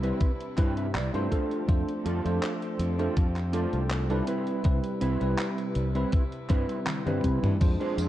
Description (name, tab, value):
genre	vaporwave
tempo	81 BPM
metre	4/4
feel	swing 53% on 16ths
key	C major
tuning	A4 = 441 Hz
part	bell-like tine electric piano	accompaniment	0.0-8.1 s	G3 to C5	-32 LUFS	equal	medium stereo tremolo, ensemble chorus, analog delay
part	warm chamber string section	sustained chords	0.0-8.1 s	C3 to G5	-38 LUFS	left 1 dB	none
part	mellow electric guitar	riff	0.0-8.1 s	C4 to G5	-33 LUFS	right 2 dB	analog chorus, vintage 12-bit sampler grit, analog delay
part	modern bright fingered electric bass	bass	0.0-8.1 s	C2 to C3	-29 LUFS	equal	none
part	gated 80s digital drum machine	drums	0.0-8.1 s	crash cymbal, handclaps, hi-hat, tambourine, toms	-34 LUFS	equal	gated reverb, vintage 12-bit sampler grit
part	electronic kick drum	drums	0.2-7.8 s	none	-25 LUFS	equal	vintage 12-bit sampler grit
room	digital ambience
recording	dark, warm production, cassette tape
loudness	-25 LUFS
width	side -13 dB against mid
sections	0.0-7.6 A section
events	clean electric guitar fill 0.2-1.7; drum fill 6.9-7.6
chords	0.0 Cmaj7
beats	0.20 0.94 | 1.69 2.43 3.17 3.91 | 4.65 5.39 6.13 6.87 | 7.61